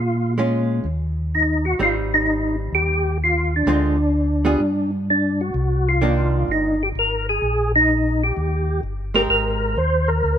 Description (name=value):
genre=jazz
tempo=128 BPM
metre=4/4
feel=swing 67% on 8ths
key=unclear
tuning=A4 = 440 Hz
part: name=percussive tonewheel organ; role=melody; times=0.0-10.4 s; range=D4 to C5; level=-19 LUFS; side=equal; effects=slow rotary speaker, chorus vibrato
part: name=mellow tonewheel organ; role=bass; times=0.0-10.4 s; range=G1 to Bb2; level=-22 LUFS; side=equal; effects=chorus vibrato, slow rotary speaker
part: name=archtop guitar, miked and amplified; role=accompaniment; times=0.4-9.7 s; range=D3 to Bb4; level=-24 LUFS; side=right 3 dB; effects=none
room=light reverb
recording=minimal, uncompressed stereo recording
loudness=-17 LUFS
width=side -8 dB against mid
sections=0.0-9.3 A section; 9.3-10.4 B section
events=none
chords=0.0 Bbm7; 0.8 Ebm; 1.8 Abmaj7; 3.7 Dm7b5; 4.6 G5; 5.5 Cm9; 7.4 Ebadd11/Bb; 8.4 Eb; 9.3 Abmaj9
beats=0.38 0.85 1.32 | 1.79 2.26 2.73 3.20 | 3.67 4.14 4.61 5.08 | 5.55 6.02 6.49 6.96 | 7.43 7.90 8.37 8.84 | 9.30 9.77 10.24